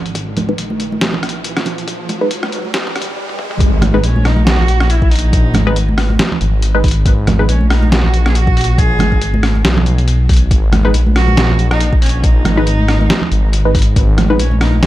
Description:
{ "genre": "deep dubstep", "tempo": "139 BPM", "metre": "4/4", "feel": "swing 56% on 16ths, half-time", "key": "G# minor", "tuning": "A4 = 440 Hz", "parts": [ { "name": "dark detuned saw bass", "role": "bass", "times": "0.0-14.9 s", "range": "G#1 to B1", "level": "-14 LUFS", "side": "equal", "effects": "none" }, { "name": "riser", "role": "sound effects", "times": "0.0-3.6 s", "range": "none", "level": "-26 LUFS", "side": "equal", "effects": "none" }, { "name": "electronic kick drum", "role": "drums", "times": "0.1-14.1 s", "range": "none", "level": "-13 LUFS", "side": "equal", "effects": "overdrive, high-pass filter on kick, high-pass filter on room" }, { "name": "trip hop sampler-style drum kit", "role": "drums", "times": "0.1-14.9 s", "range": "hi-hat, rim click, snare drum, toms", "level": "-19 LUFS", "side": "equal", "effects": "none" }, { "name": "congas", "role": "percussion", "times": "0.4-14.8 s", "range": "none", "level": "-20 LUFS", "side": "right 2 dB", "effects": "none" }, { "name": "filtered dub chord stab", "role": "stabs", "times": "0.5-7.5, 10.8-14.4 s", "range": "G#3 to B4", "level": "-21 LUFS", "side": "left 1 dB", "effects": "phaser, dub echo" }, { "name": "dark cello", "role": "melody", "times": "4.0-14.9 s", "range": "C#4 to G#4", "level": "-22 LUFS", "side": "right 1 dB", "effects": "dub echo" } ], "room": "little or no reverb", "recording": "dark, warm production, high-pass filter", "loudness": "-11 LUFS", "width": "side -15 dB against mid", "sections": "0.0-3.6 A section; 3.6-14.9 B section", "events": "build-up 0.0-3.6; riser 0.0-3.6; filter sweep on synth stab 0.0-3.6; filter sweep 0.0-3.6; stop 3.2-3.6; drum fill 3.3-3.6; drop 3.6-14.9", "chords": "0.0 N.C.; 3.6 G#m" }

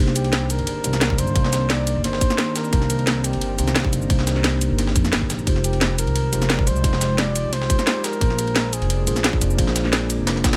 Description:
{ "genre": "liquid drum and bass", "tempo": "175 BPM", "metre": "4/4", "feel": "straight", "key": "C minor", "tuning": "A4 = 440 Hz", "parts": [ { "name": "mellow tine electric piano", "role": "accompaniment", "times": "0.0-10.6 s", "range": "Ab3 to D5", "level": "-29 LUFS", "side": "equal", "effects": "phaser, low-pass filter" }, { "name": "ethereal airy pad", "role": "sustained chords", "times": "0.1-10.6 s", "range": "Eb3 to D5", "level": "-36 LUFS", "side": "equal", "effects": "none" }, { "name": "upright bass", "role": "bass", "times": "0.0-10.6 s", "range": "F1 to F2", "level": "-25 LUFS", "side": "equal", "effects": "none" }, { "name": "garage drum kit", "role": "drums", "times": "0.1-10.6 s", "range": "cabasa, hi-hat, snare drum", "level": "-26 LUFS", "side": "equal", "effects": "none" }, { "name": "trumpet with bucket mute", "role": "melody", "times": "0.2-9.4 s", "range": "G4 to D5", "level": "-30 LUFS", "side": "equal", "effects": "dub echo" }, { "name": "breakbeat sampler-style drum kit", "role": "drums", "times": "0.2-10.6 s", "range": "ride cymbal, snare drum", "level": "-31 LUFS", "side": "equal", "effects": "high-pass filter on cymbals, high-pass filter on snare" }, { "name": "electronic kick drum", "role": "drums", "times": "1.1-10.5 s", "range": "none", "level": "-23 LUFS", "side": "equal", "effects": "none" } ], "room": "light reverb", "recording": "none", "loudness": "-20 LUFS", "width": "mono", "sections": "0.0-10.6 A section", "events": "filter sweep on tine electric piano 0.0-10.6", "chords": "0.0 Cm9; 5.5 Fm9; 8.2 Bb9" }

